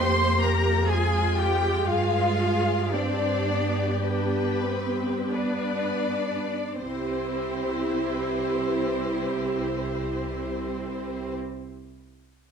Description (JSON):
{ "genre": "classical, slow romantic movement for string orchestra", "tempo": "38-68 BPM", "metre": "4/4", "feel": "rubato", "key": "unclear", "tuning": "A4 = 441 Hz", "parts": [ { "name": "warm studio violin section", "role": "melody", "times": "0.0-11.3 s", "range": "B4 to C6", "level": "-33 LUFS", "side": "left 6 dB", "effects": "none" }, { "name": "rich studio violin section", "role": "second line", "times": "0.0-11.3 s", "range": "B4 to C6", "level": "-32 LUFS", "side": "left 4 dB", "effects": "none" }, { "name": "rich studio viola section", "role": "accompaniment", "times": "0.0-11.3 s", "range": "Ab3 to B4", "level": "-29 LUFS", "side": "equal", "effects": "none" }, { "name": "rich studio double bass section", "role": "bass", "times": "0.0-11.3 s", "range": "C2 to G2", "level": "-30 LUFS", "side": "right 2 dB", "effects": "none" }, { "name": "warm chamber cello section", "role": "bass", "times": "0.0-11.3 s", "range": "B3 to C5", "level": "-30 LUFS", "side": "right 3 dB", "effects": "none" } ], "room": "wet recital hall reverb, RT60 1.3 s", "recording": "none", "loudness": "-24 LUFS", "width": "side -7 dB against mid", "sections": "0.0-6.8 A section; 6.8-12.3 B section", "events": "slowing down 0.0-6.8", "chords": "0.0 Abmaj13/F; 1.9 G7b9; 6.8 C", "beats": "0.89 | 1.89 2.93 4.03 5.33 | 6.81 8.15 9.50 10.89" }